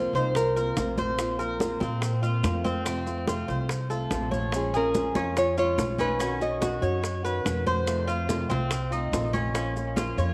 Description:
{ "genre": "latin, Cuban son and guajira", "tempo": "144 BPM", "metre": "4/4", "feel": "straight", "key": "Bb minor", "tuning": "A4 = 435 Hz", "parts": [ { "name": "nylon-string guitar", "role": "melody", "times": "0.0-0.9, 4.6-7.2 s", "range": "Ab4 to D#5", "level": "-30 LUFS", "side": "equal", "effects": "none" }, { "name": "nylon-string guitar", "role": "second line", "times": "0.0-0.9, 4.5-7.2 s", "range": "Db4 to F#4", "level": "-37 LUFS", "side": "equal", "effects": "none" }, { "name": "flamenco guitar", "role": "accompaniment", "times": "0.0-10.3 s", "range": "B2 to F#4", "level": "-36 LUFS", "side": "equal", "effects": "none" }, { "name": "Cuban tres", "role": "arpeggios", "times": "0.0-10.3 s", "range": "C4 to Db5", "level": "-33 LUFS", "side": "equal", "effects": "tape echo" }, { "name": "upright bass", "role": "bass", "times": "0.0-10.3 s", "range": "Bb1 to Bb2", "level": "-33 LUFS", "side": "equal", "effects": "none" }, { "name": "bongos", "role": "percussion", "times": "0.1-10.3 s", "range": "none", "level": "-37 LUFS", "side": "equal", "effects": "none" }, { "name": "maracas", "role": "percussion", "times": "0.2-10.3 s", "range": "none", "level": "-46 LUFS", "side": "equal", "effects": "none" }, { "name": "congas", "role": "percussion", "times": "0.4-10.2 s", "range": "none", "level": "-36 LUFS", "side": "equal", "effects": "none" } ], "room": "moderate plate reverb, RT60 2.4 s", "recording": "none", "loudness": "-27 LUFS", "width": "mono", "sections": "0.0-10.3 A section", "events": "none", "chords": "0.0 Bbsus2; 2.9 F; 4.5 Bbm7; 6.2 Badd9; 7.9 F7; 9.6 Bbm" }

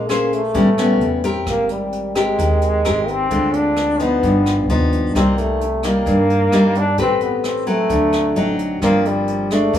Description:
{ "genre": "bossa nova", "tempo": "131 BPM", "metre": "4/4", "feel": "straight", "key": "G minor", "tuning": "A4 = 441 Hz", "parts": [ { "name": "bright trombone", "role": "melody", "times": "0.0-9.8 s", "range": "G3 to D4", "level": "-20 LUFS", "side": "equal", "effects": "none" }, { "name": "nylon-string guitar", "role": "accompaniment", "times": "0.0-9.8 s", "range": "G2 to C5", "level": "-17 LUFS", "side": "left 1 dB", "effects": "none" }, { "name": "upright bass", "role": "bass", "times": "0.0-9.8 s", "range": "E1 to G2", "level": "-25 LUFS", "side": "equal", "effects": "none" }, { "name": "jazz brush drum kit", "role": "drums", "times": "0.1-9.8 s", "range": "hi-hat, kick drum, rim click", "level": "-30 LUFS", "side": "equal", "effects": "none" } ], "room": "moderate large studio reverb, RT60 1.3 s", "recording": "band playing live in one room, small room ambience", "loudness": "-15 LUFS", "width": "side -10 dB against mid", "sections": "0.0-9.8 A section", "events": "none", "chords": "0.0 Bbm9; 0.6 A9; 1.5 Abmaj9; 3.3 Dm7b5; 4.2 Gaug7; 5.1 Cm7; 7.0 Am9; 7.9 D7b9; 8.8 Gm7" }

